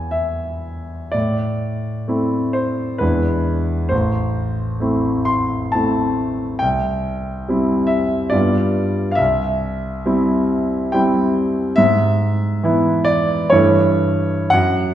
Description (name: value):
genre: classical, romantic character piece for solo piano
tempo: 57-71 BPM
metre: 3/4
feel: rubato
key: A minor, A major from 11.8 s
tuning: A4 = 440 Hz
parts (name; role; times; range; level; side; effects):
- clear concert grand piano; solo; 0.0-14.9 s; A1 to C6; -16 LUFS; equal; none
room: wet scoring stage reverb, RT60 1.6 s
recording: recorded in a church or concert hall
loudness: -16 LUFS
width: side -11 dB against mid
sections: 0.0-1.1 A section; 1.1-14.9 B section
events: none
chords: 0.0 E; 1.1 Am; 3.0 E7; 3.9 Am; 6.6 C; 8.3 G7; 9.2 C; 11.8 E/G#; 13.5 A7/G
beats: 0.15 | 1.14 2.09 3.02 | 3.92 4.81 5.74 | 6.61 7.47 8.32 | 9.19 10.07 10.94 | 11.79 12.63 13.52 | 14.52